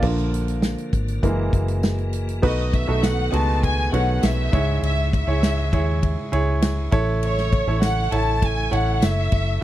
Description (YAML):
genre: piano-driven pop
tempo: 100 BPM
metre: 4/4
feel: straight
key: unclear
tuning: A4 = 439 Hz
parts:
  - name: clear concert grand piano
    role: accompaniment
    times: 0.0-9.6 s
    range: G#2 to C#5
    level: -25 LUFS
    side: right 3 dB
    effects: none
  - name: tonewheel organ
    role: sustained chords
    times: 0.0-9.6 s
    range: B2 to Gb4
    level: -34 LUFS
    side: left 1 dB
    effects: chorus vibrato, slow rotary speaker
  - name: vintage muted fingered electric bass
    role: bass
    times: 0.0-9.6 s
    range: Gb1 to D#2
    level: -22 LUFS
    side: equal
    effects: none
  - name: natural country drum kit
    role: drums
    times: 0.0-9.5 s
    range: crash cymbal, hi-hat, kick drum, ride cymbal, snare drum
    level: -22 LUFS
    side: equal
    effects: none
  - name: tambourine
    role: percussion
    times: 0.6-9.2 s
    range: none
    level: -40 LUFS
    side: left 15 dB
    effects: none
  - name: warm symphonic violin section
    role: melody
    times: 2.5-9.6 s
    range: C#5 to A5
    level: -26 LUFS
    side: left 1 dB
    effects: none
room: little or no reverb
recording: dry, close 1970s-style studio recording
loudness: -19 LUFS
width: side -13 dB against mid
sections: 0.0-2.4 A section; 2.4-9.6 B section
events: grand piano solo 0.0-2.4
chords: 0.0 Bb; 1.2 Gb7; 2.4 B7; 4.5 C#m; 6.9 A